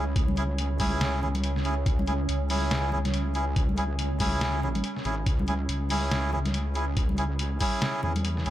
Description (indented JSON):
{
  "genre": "deep dubstep",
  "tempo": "141 BPM",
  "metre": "4/4",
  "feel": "swing 59% on 16ths, half-time",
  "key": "C# minor",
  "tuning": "A4 = 440 Hz",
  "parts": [
    { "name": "deep dark ambient pad", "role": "sustained chords", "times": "0.0-8.5 s", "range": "C#4", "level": "-37 LUFS", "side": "right 4 dB", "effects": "chorus, built-in reverb" },
    { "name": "melodica", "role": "stabs", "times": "0.0-8.5 s", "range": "C#4 to G#4", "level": "-32 LUFS", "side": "right 1 dB", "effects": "dub echo" },
    { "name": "wobble bass", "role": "bass", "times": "0.0-8.5 s", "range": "G#1 to E2", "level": "-28 LUFS", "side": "equal", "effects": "chorus, tube saturation" },
    { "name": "electronic kick drum", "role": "drums", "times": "0.2-7.7 s", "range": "none", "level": "-27 LUFS", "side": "equal", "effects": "none" },
    { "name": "trip hop sampler-style drum kit", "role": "drums", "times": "0.2-8.5 s", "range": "hi-hat, snare drum", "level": "-33 LUFS", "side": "left 1 dB", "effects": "none" },
    { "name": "congas", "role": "percussion", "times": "0.3-8.2 s", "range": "none", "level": "-35 LUFS", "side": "left 1 dB", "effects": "dub echo" }
  ],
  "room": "light reverb",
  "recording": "none",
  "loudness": "-25 LUFS",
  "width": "side -13 dB against mid",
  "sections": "0.0-8.5 A section",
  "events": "none",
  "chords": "0.0 C#m",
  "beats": "| 0.16 0.58 1.01 1.44 | 1.86 2.29 2.71 3.14 | 3.56 3.99 4.41 4.84 | 5.26 5.69 6.12 6.54 | 6.97 7.39 7.82 8.24"
}